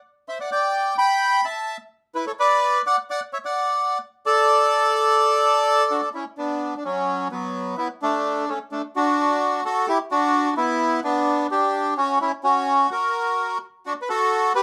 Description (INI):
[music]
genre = tango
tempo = 128 BPM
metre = 4/4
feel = rubato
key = D major, B minor from 6.4 s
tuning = A4 = 440 Hz
[part]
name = bandoneon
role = solo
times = 0.3-14.6 s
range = F#3 to B5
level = -21 LUFS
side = equal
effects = none
[sound]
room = moderate studio reverb, RT60 0.6 s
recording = none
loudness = -22 LUFS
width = mono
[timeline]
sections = 0.0-6.4 A section; 6.4-14.6 B section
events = none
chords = 0.0 Cadd9; 0.7 G; 1.7 A5; 2.6 Bm; 3.5 N.C.; 4.5 D5; 6.4 B5; 8.2 D; 10.1 Gmaj7; 12.0 F#; 13.8 D